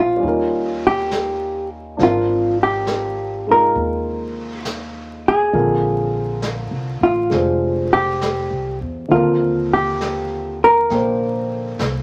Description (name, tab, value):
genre	jazz ballad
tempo	68 BPM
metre	4/4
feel	swing 68% on 8ths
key	unclear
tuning	A4 = 440 Hz
part	hollow-body jazz guitar	melody	0.0-11.8 s	F4 to Bb4	-20 LUFS	equal	none
part	warm baby grand piano	accompaniment	0.0-12.0 s	D3 to G5	-26 LUFS	equal	none
part	upright bass	bass	0.0-12.0 s	F1 to E2	-29 LUFS	equal	none
part	vintage brush drum kit	drums	0.2-12.0 s	brushed snare drum, hi-hat, snare drum	-32 LUFS	equal	none
room	moderate studio reverb, RT60 0.7 s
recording	vinyl crackle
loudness	-19 LUFS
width	mono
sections	0.0-12.0 A section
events	none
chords	0.2 Eb9; 2.0 Ab6; 5.5 Bb13; 9.1 Eb69